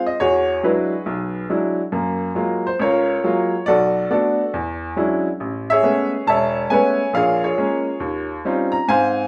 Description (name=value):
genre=solo jazz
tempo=138 BPM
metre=4/4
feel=swing 67% on 8ths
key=unclear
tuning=A4 = 439 Hz
part: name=bright upright piano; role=solo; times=0.0-9.3 s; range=E1 to Bb5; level=-20 LUFS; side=equal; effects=none
room=wet small room reverb, RT60 0.5 s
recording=rough home demo mix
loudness=-20 LUFS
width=mono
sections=0.0-9.3 A section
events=none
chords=0.2 E9; 1.9 Gbmaj9; 3.7 Bm7; 4.5 E13; 5.4 Amaj9; 7.1 Bbm7; 8.0 Eb13